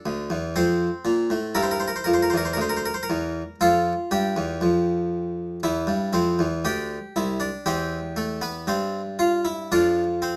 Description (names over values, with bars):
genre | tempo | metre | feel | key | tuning
classical, baroque-style 4-part fugue for harpsichord | 59 BPM | 4/4 | straight | F major | A4 = 438 Hz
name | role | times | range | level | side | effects
harpsichord | solo | 0.0-10.4 s | C2 to C5 | -24 LUFS | equal | none
room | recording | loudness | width
light reverb | close, detailed microphones | -24 LUFS | mono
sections
0.0-10.4 A section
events
none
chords
0.0 F; 1.6 C7; 3.6 F; 5.6 C; 9.7 F5